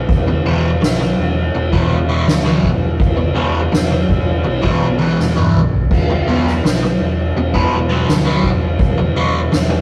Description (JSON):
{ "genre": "psychedelic rock", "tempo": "83 BPM", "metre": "4/4", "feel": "straight", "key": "unclear", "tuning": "A4 = 440 Hz", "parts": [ { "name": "overdriven fingered electric bass", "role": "bass", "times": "0.0-9.8 s", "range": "E1 to D2", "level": "-21 LUFS", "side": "equal", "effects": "none" }, { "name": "soft-mallet drum kit", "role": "drums", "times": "0.1-9.7 s", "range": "crash cymbal, kick drum, ride cymbal, snare drum, toms", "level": "-18 LUFS", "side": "equal", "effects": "none" }, { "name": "fuzz guitar", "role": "riff", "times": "0.3-9.7 s", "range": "E2 to B3", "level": "-21 LUFS", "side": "equal", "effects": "distortion, phaser" } ], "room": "light reverb", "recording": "rough rehearsal-room recording", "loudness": "-15 LUFS", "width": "mono", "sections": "0.0-9.8 A section", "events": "drum fill 5.2-5.9", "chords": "0.0 E5; 5.9 B5/E", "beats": "| 0.08 0.81 1.54 2.27 | 3.00 3.73 4.45 5.18 | 5.91 6.63 7.35 8.07 | 8.80 9.52" }